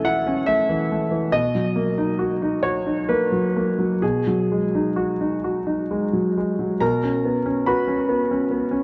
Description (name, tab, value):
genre	neoclassical minimalist piano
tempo	62-72 BPM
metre	3/4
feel	rubato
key	B major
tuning	A4 = 436 Hz
part	clear concert grand piano	solo	0.0-8.8 s	B2 to B5	-22 LUFS	equal	tape echo
room	light reverb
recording	worn, warbling old tape, cassette tape, warbly pitch drift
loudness	-22 LUFS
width	mono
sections	0.0-6.8 A section; 6.8-8.8 B section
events	none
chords	0.0 A/B; 1.3 Bmaj7; 4.0 G#m7/B; 6.8 F#sus4/B